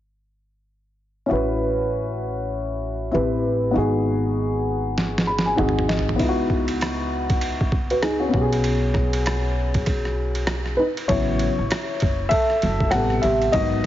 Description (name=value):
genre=hip hop, jazz-hop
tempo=98 BPM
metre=4/4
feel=swing 60% on 16ths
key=unclear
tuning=A4 = 441 Hz
part: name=dark upright piano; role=accompaniment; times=1.3-13.9 s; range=C3 to B5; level=-22 LUFS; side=left 1 dB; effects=none
part: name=upright bass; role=bass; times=1.3-13.9 s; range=F#1 to C#2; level=-26 LUFS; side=equal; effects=none
part: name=trip hop sampler-style drum kit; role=drums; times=5.0-13.7 s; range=hi-hat, kick drum, ride cymbal, rim click, snare drum, toms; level=-25 LUFS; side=right 1 dB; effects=overdrive
room=light reverb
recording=heavily compressed radio sound, nothing above 7.5 kHz, faint mains hum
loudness=-20 LUFS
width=side -12 dB against mid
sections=1.3-11.1 A section; 11.1-13.9 B section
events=drum fill 5.0-6.2; upright piano fill 5.0-6.2; upright piano solo 11.1-13.9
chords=1.3 A69; 3.1 Am7; 3.7 G#m7; 5.6 G#7; 6.2 C#m11; 8.3 Bsus2; 11.1 A69; 12.9 Am7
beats=| 1.29 1.91 2.52 3.13 | 3.74 4.36 4.97 5.58 | 6.19 6.80 7.42 8.03 | 8.64 9.25 9.87 10.48 | 11.09 11.70 12.31 12.93 | 13.54